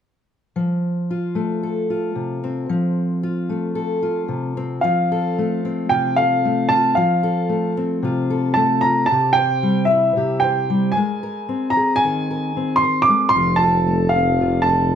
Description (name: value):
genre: folk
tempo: 113 BPM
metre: 4/4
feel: straight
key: F major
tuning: A4 = 441 Hz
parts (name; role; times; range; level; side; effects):
- fingerpicked steel-string acoustic guitar; accompaniment; 0.6-15.0 s; C3 to C5; -20 LUFS; left 1 dB; none
- warm upright piano; melody; 4.8-15.0 s; E5 to D6; -18 LUFS; right 1 dB; none
- mellow tuba; bass; 13.3-15.0 s; F1; -21 LUFS; right 1 dB; none
room: light reverb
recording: band playing live in one room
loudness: -17 LUFS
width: side -8 dB against mid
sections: 0.6-4.8 A section; 4.8-15.0 B section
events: none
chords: 0.6 F; 9.1 C; 10.9 Abadd9; 13.3 F